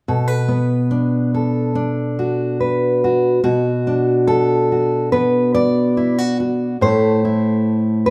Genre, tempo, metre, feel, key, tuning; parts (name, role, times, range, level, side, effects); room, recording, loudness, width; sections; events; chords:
folk, solo fingerstyle acoustic guitar; 71 BPM; 4/4; straight; A4 = 440 Hz
fingerpicked steel-string acoustic guitar; solo; 0.1-8.1 s; A2 to D5; -17 LUFS; equal
moderate large studio reverb, RT60 1.1 s; band playing live in one room; -17 LUFS; mono
0.1-3.4 A section; 3.4-8.1 B section
0.1 Bm; 6.8 Am